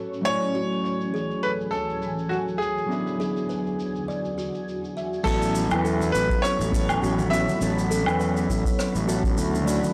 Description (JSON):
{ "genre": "sunset chillout", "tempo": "102 BPM", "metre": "4/4", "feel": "swing 54% on 16ths", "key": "A major", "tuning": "A4 = 441 Hz", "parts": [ { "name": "mellow electric guitar", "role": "accompaniment", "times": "0.0-9.9 s", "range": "F#3 to G#5", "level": "-30 LUFS", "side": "equal", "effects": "tape echo" }, { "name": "shimmering ambient pad", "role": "sustained chords", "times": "0.0-9.9 s", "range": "D2 to B5", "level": "-36 LUFS", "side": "equal", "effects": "chorus, built-in reverb, phaser" }, { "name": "jazz brush drum kit", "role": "drums", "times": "0.1-9.9 s", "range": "crash cymbal, rim click, shaker, woodblock", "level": "-35 LUFS", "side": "equal", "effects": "low-pass filter on cymbals, low-pass filter on snare, low-pass filter on perc, low-pass filter on room" }, { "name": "bright grand piano", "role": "melody", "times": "0.3-9.0 s", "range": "F#4 to E5", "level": "-31 LUFS", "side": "equal", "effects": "tape echo" }, { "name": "kalimba", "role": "arpeggios", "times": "0.3-9.8 s", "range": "F#4 to E5", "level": "-34 LUFS", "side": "equal", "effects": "tape echo" }, { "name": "fuzz fingered electric bass", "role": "bass", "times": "5.3-9.8 s", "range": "A1 to E2", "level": "-29 LUFS", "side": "equal", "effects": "overdrive" }, { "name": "electronic kick drum", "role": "drums", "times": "5.3-9.3 s", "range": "none", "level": "-29 LUFS", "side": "equal", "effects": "none" }, { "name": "congas", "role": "percussion", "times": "6.0-9.9 s", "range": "none", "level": "-36 LUFS", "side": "equal", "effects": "none" } ], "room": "small room ambience", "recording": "dry, gritty hardware recording, transformer saturation", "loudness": "-25 LUFS", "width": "mono", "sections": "0.0-5.3 A section; 5.3-9.9 B section", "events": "none", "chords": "0.3 Dmaj9#11; 2.9 E9; 5.3 A69" }